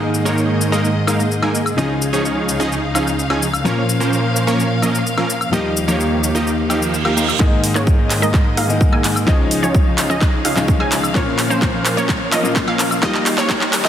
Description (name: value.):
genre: EDM, festival progressive house.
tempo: 128 BPM.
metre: 4/4.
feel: straight.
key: unclear.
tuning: A4 = 440 Hz.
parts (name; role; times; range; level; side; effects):
bright grand piano; accompaniment; 0.0-13.9 s; Ab2 to Ab4; -22 LUFS; left 2 dB; sidechain pumping, digital delay.
rich studio string section; sustained chords; 0.0-13.9 s; Db2 to F5; -22 LUFS; equal; sidechain pumping.
supersaw stab; riff; 0.0-13.9 s; F3 to Ab5; -20 LUFS; right 1 dB; sidechain pumping, low-pass filter, digital delay.
house drum kit; drums; 0.1-13.9 s; handclaps, hi-hat, shaker, woodblock; -22 LUFS; left 1 dB; overdrive.
reverse cymbal and riser; sound effects; 6.7-13.9 s; none; -29 LUFS; right 5 dB; none.
wide unison pluck; arpeggios; 7.4-13.9 s; C5 to Ab5; -24 LUFS; right 1 dB; sidechain pumping, digital delay.
electronic kick drum; drums; 7.4-13.6 s; none; -16 LUFS; equal; overdrive.
room: moderate scoring stage reverb, RT60 2.0 s.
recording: dense, heavily limited modern master, high-pass filter.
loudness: -14 LUFS.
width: side -10 dB against mid.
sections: 0.0-7.4 A section; 7.4-13.9 B section.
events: reverse cymbal 6.7-7.4; build-up 7.4-13.9; drum fill 7.4-13.9; filter sweep on supersaw synth 7.4-13.9; filter sweep 7.4-13.9.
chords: 0.0 Absus2; 1.8 Dbadd9; 3.7 Bbm; 5.5 Ebadd9; 7.4 Absus2; 9.3 Dbadd9; 11.2 Bbm; 13.0 Ebadd9.